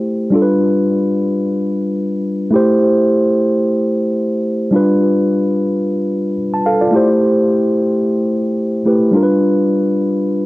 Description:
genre	afrobeats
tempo	109 BPM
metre	4/4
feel	swing 55% on 16ths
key	unclear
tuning	A4 = 440 Hz
part	mellow tine electric piano	solo	0.0-10.5 s	G3 to A5	-13 LUFS	equal	cassette tape, analog delay
room	light reverb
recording	home recording on cassette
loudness	-13 LUFS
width	side -19 dB against mid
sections	0.0-10.5 A section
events	tine electric piano fill 10.2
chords	0.3 G7; 2.5 Am7; 4.7 G7; 6.9 Am7; 9.1 G7

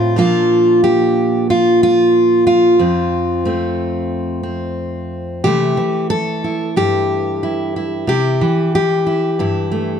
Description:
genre	folk, solo fingerstyle acoustic guitar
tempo	91 BPM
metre	4/4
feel	straight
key	unclear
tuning	A4 = 440 Hz
part	fingerpicked steel-string acoustic guitar	solo	0.0-10.0 s	F2 to A4	-14 LUFS	equal	none
room	light reverb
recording	dark, warm production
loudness	-13 LUFS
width	side -7 dB against mid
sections	0.0-5.4 A section; 5.4-10.0 B section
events	none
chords	0.2 Bb; 2.8 F; 5.4 C6

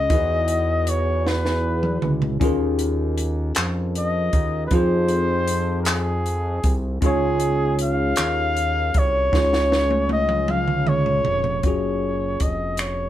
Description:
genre	slow six-eight R&B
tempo	52 BPM (dotted quarters)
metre	6/8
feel	straight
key	Db major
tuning	A4 = 441 Hz
part	warm flugelhorn	melody	0.0-13.1 s	Ab4 to F5	-23 LUFS	left 1 dB	none
part	mellow tine electric piano	accompaniment	0.0-13.1 s	Bb3 to Db5	-26 LUFS	left 1 dB	phaser
part	fat analog bass	bass	0.0-13.1 s	F1 to F2	-24 LUFS	equal	none
part	compact cocktail drum kit	drums	0.1-13.0 s	finger snaps, handclaps, hi-hat, kick drum, snare drum, toms	-23 LUFS	right 1 dB	none
room	moderate studio reverb, RT60 0.6 s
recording	band playing live in one room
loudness	-19 LUFS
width	side -12 dB against mid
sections	0.0-11.6 A section; 11.6-13.1 B section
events	drum fill 1.3-2.4, 9.3-11.6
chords	0.1 Emaj9; 2.4 Eb9sus4; 4.7 Fm7; 7.0 Dbmaj9; 9.3 Dbadd9; 11.6 Gbmaj9

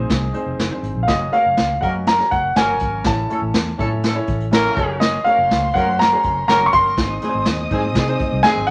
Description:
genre	uptempo 1960s-style soul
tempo	122 BPM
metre	4/4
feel	straight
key	unclear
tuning	A4 = 441 Hz
part	warm concert grand piano	melody	0.0-8.7 s	Eb5 to Db6	-20 LUFS	equal	tube saturation
part	warm horn section	second line	0.0-8.7 s	Eb3 to Bb4	-27 LUFS	equal	none
part	warm upright piano	accompaniment	0.0-8.7 s	Ab2 to Eb5	-29 LUFS	equal	none
part	vintage muted fingered electric bass	bass	0.0-8.7 s	F1 to C3	-27 LUFS	equal	none
part	vintage brush drum kit	drums	0.1-8.7 s	hi-hat, kick drum, snare drum	-24 LUFS	equal	none
part	congas	percussion	0.2-8.7 s	none	-36 LUFS	equal	none
part	dark studio violin section	second line	5.0-8.7 s	Bb4 to Eb6	-33 LUFS	equal	none
room	wet studio reverb, RT60 0.7 s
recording	none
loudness	-18 LUFS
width	mono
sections	0.0-1.1 A section; 1.1-8.7 B section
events	none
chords	0.0 Ab; 1.1 Gb; 3.0 A; 4.8 Gb; 7.0 Ab

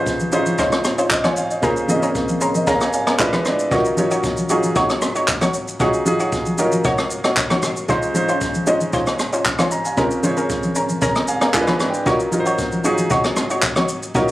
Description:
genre	amapiano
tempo	115 BPM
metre	4/4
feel	straight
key	Eb dorian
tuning	A4 = 444 Hz
part	warm grand piano	accompaniment	0.0-14.3 s	Db3 to C6	-20 LUFS	right 1 dB	none
part	analog pluck	stabs	0.0-14.3 s	Db4 to Db5	-22 LUFS	equal	chorus, digital delay
part	jazz brush drum kit	drums	0.1-14.3 s	handclaps, kick drum, rim click, shaker	-22 LUFS	equal	none
part	congas	percussion	0.2-14.3 s	none	-26 LUFS	left 1 dB	none
room	light reverb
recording	recorded on a phone in the room, club reverb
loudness	-16 LUFS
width	side -16 dB against mid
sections	0.0-14.3 A section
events	grand piano fill 2.1-3.7, 11.0-12.1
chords	0.0 Dbmaj9; 1.6 Bbm7/Db; 3.2 Ddim7; 3.7 Ebm7; 7.9 Dbmaj9; 10.0 Bbm7/Db; 11.5 Ddim7; 12.1 Ebm7

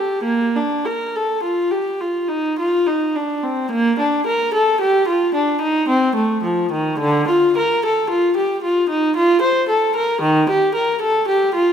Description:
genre	classical, baroque-style suite movement for unaccompanied viola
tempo	47-57 BPM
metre	3/4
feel	rubato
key	Bb major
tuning	A4 = 440 Hz
part	warm viola	solo	0.0-11.7 s	D3 to C5	-16 LUFS	equal	none
room	moderate recital hall reverb, RT60 1.7 s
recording	none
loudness	-16 LUFS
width	side -8 dB against mid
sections	0.0-3.7 A section; 3.7-11.7 A section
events	none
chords	none

